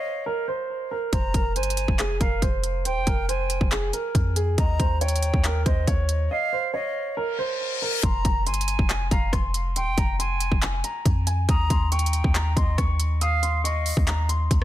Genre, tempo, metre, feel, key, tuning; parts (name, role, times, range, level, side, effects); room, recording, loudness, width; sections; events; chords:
hip hop, trap; 139 BPM; 4/4; half-time; F minor; A4 = 440 Hz
dark baby grand piano; melody; 0.0-14.6 s; Ab4 to Eb6; -29 LUFS; right 1 dB; low-pass filter, ping-pong delay
silver concert flute; second line; 0.0-14.1 s; Eb5 to Bb5; -30 LUFS; right 2 dB; ping-pong delay
clean 808-style bass; bass; 1.1-14.6 s; Eb1 to F2; -24 LUFS; equal
trap drum kit; drums; 1.1-14.6 s; handclaps, hi-hat, kick drum, rim click; -24 LUFS; equal; overdrive
reverse cymbal; sound effects; 7.3-8.0 s; -28 LUFS; left 6 dB
digital ambience; dense, heavily limited modern master; -21 LUFS; side -13 dB against mid
0.0-8.0 A section; 8.0-14.6 B section
break 0.0-1.1, 6.3-8.0; reverse cymbal 7.3-8.0
0.0 Eb7(no3); 1.1 Fm; 4.6 Eb7(no3); 8.0 Fm; 11.5 Eb7(no3)